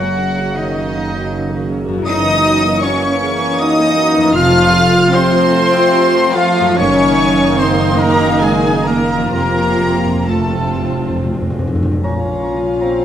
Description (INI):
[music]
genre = classical, slow romantic movement for symphony orchestra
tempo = 62-82 BPM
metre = 3/4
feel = rubato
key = unclear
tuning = A4 = 444 Hz
[part]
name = warm symphonic violin section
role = melody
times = 0.0-13.0 s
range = Eb5 to F6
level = -22 LUFS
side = left 3 dB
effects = none
[part]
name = bright small flute group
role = second line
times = 0.0-12.9 s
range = Eb5 to F6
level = -22 LUFS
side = right 1 dB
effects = none
[part]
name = dark chamber violin section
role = second line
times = 0.0-13.0 s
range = Eb4 to F5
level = -22 LUFS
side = left 3 dB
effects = none
[part]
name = warm oboe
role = second line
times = 0.0-13.0 s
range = Eb4 to Bb5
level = -23 LUFS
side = right 1 dB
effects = none
[part]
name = dark studio viola section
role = accompaniment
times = 0.0-13.0 s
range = C3 to Gb4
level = -21 LUFS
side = right 2 dB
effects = none
[part]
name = mellow French horn section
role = sustained chords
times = 0.0-13.0 s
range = Eb3 to F4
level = -20 LUFS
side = left 3 dB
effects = none
[part]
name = warm trombone section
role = sustained chords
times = 0.0-13.0 s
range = C3 to Db4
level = -22 LUFS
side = right 2 dB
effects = none
[part]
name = concert harp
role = arpeggios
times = 0.0-13.0 s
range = F2 to Eb5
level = -23 LUFS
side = left 5 dB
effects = none
[part]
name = rich symphonic cello section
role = bass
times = 0.0-13.0 s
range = Bb2 to F4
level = -20 LUFS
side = right 3 dB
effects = none
[part]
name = warm symphonic double bass section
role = bass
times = 0.0-13.0 s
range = F1 to Bb1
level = -22 LUFS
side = right 3 dB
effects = none
[part]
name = timpani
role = percussion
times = 9.3-12.0 s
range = F2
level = -20 LUFS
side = left 1 dB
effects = none
[part]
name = mellow bassoon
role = accompaniment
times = 12.0-13.0 s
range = C4 to Db4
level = -22 LUFS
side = equal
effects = none
[sound]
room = wet recital hall reverb, RT60 1.5 s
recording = none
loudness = -12 LUFS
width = side -10 dB against mid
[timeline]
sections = 0.0-12.0 A section; 12.0-13.0 B section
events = timpani fill 9.3-12.0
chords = 0.0 Gb; 2.1 Gb7; 4.4 F; 6.8 Ebm/Gb; 9.3 F; 12.0 Bbm